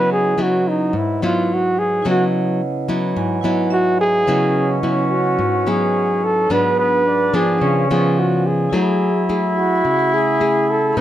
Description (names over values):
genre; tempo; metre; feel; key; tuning
bossa nova; 108 BPM; 4/4; straight; C# minor; A4 = 436 Hz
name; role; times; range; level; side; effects
breathy flugelhorn; melody; 0.0-11.0 s; D#4 to B4; -18 LUFS; right 1 dB; none
nylon-string guitar; accompaniment; 0.0-11.0 s; G#2 to G#4; -20 LUFS; left 2 dB; none
vibraphone with medium hard mallets; accompaniment; 0.0-11.0 s; A3 to B5; -24 LUFS; right 3 dB; none
alto flute; second line; 4.3-11.0 s; B3 to E4; -22 LUFS; equal; none
room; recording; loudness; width
light reverb; close, detailed microphones; -15 LUFS; side -12 dB against mid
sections
0.0-4.3 A section; 4.3-11.0 B section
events
flugelhorn solo 0.0-4.3; vibraphone fill 2.6-4.3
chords
0.0 C#m11; 6.5 G#m7b5; 7.6 C#7b9; 8.7 F#m9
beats
0.39 0.94 1.50 | 2.05 2.61 3.16 3.72 | 4.27 4.83 5.39 5.94 | 6.50 7.06 7.61 8.17 | 8.73 9.28 9.84 10.40 | 10.95